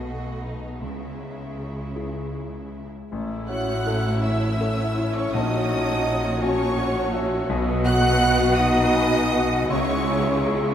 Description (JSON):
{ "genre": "cinematic, emotional film score for orchestra", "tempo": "52-56 BPM (dotted quarters)", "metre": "6/8", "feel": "rubato", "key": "unclear", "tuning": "A4 = 441 Hz", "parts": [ { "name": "warm symphonic violin section", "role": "melody", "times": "0.0-10.7 s", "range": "D#5 to F#6", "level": "-31 LUFS", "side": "equal", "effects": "none" }, { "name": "rich symphonic violin section", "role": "second line", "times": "0.0-10.7 s", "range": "D#4 to F#5", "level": "-33 LUFS", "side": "right 1 dB", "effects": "none" }, { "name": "clear concert grand piano", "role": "accompaniment", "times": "0.0-10.7 s", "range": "A1 to F#5", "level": "-29 LUFS", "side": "left 2 dB", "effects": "none" }, { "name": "warm studio viola section", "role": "accompaniment", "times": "0.0-10.7 s", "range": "G#3 to F#4", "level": "-30 LUFS", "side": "right 1 dB", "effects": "none" }, { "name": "clear symphonic cello section", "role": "bass", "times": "0.0-10.7 s", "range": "A2 to C#3", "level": "-28 LUFS", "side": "right 1 dB", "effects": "none" }, { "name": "warm symphonic double bass section", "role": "bass", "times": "0.0-10.7 s", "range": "A1 to C#2", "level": "-30 LUFS", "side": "equal", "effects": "none" }, { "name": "dark cor anglais", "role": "second line", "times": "3.1-10.7 s", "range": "D#5 to G#5", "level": "-31 LUFS", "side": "left 1 dB", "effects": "none" }, { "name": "mellow hollow silver concert flute", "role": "second line", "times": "3.5-10.7 s", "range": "C#5 to F#5", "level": "-29 LUFS", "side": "right 3 dB", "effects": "none" }, { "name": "warm French horn section", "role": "sustained chords", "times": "3.5-10.7 s", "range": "C#4 to F#4", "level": "-28 LUFS", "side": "left 2 dB", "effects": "none" } ], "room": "wet cathedral reverb, RT60 6.9 s", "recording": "in a vast, echoing space", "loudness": "-20 LUFS", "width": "side -9 dB against mid", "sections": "0.0-3.1 A section; 3.1-10.7 B section", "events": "none", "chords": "0.0 B; 0.8 C#m; 3.1 A; 5.3 F#/A#; 7.5 B; 9.7 C#m" }